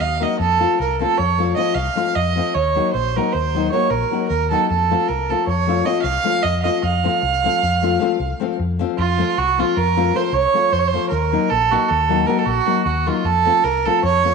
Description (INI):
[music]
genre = balkan folk, Balkan wedding band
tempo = 308 BPM (eighths)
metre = 11/8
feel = straight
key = F phrygian dominant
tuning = A4 = 442 Hz
[part]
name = rich fiddle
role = melody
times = 0.0-14.3 s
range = F4 to F5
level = -18 LUFS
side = right 8 dB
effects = none
[part]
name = hollow-body short-scale fingered electric bass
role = bass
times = 0.0-14.3 s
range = Bb1 to F2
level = -22 LUFS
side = left 2 dB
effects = transformer saturation
[part]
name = nylon-string guitar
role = accompaniment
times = 0.2-14.3 s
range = F3 to Gb4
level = -22 LUFS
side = left 13 dB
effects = none
[sound]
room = moderate echo chamber reverb, RT60 1.8 s, small room reverb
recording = 1960s-style stereo with parts hard left and right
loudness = -16 LUFS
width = side -5 dB against mid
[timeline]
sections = 0.0-9.0 A section; 9.0-14.3 A section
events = none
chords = 0.4 F; 2.6 Ebm; 4.7 F; 11.1 Ebm; 13.2 F